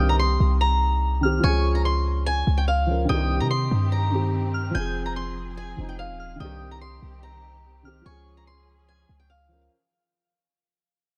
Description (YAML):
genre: hip hop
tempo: 145 BPM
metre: 4/4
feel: half-time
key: C phrygian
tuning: A4 = 440 Hz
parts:
  - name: fingerpicked swing-style acoustic guitar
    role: melody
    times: 0.0-9.7 s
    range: F5 to C6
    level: -30 LUFS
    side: equal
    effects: none
  - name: soft synth bell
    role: second line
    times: 0.0-9.7 s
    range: Db6 to G6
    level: -36 LUFS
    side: equal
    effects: chorus, delay
  - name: dark concert grand piano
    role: accompaniment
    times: 0.0-9.7 s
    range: Eb3 to Bb4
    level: -32 LUFS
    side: equal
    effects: none
  - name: warm brass ensemble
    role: stabs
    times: 0.0-0.2, 3.1-3.5, 6.4-6.8 s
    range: C2 to Eb3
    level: -37 LUFS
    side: equal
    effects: delay
  - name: warm 808-style bass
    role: bass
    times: 0.0-9.7 s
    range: Eb1 to C3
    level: -26 LUFS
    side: equal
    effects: none
  - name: muted studio string section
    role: sustained chords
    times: 3.1-9.7 s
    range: Eb3 to Ab4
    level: -42 LUFS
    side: equal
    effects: none
room: small room ambience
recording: none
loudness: -23 LUFS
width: mono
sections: 0.0-9.7 A section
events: fade-out 0.0-9.7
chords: 0.0 Cm; 1.4 Db; 3.1 Cm; 4.7 Fm; 6.4 Cm; 8.1 Db